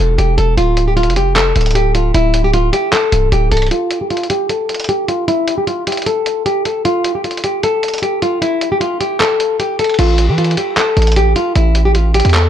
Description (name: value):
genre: hip hop, trap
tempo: 153 BPM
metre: 4/4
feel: half-time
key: A minor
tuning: A4 = 440 Hz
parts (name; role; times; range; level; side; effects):
- nylon-string guitar; melody; 0.0-12.5 s; E4 to A4; -15 LUFS; left 1 dB; low-pass filter, tape echo
- distorted 808-style bass; bass; 0.0-3.7, 10.0-12.5 s; C1 to E3; -13 LUFS; equal; distortion
- lo-fi sampler-style drum kit; drums; 0.2-12.4 s; crash cymbal, handclaps, hi-hat; -20 LUFS; equal; vintage 12-bit sampler grit
room: light reverb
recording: dark, warm production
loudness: -12 LUFS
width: side -10 dB against mid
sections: 0.0-3.7 A section; 3.7-10.0 B section; 10.0-12.5 C section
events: filter sweep on nylon-string guitar 3.7-10.0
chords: 0.0 E5; 0.6 Dm; 3.7 N.C.; 10.0 A5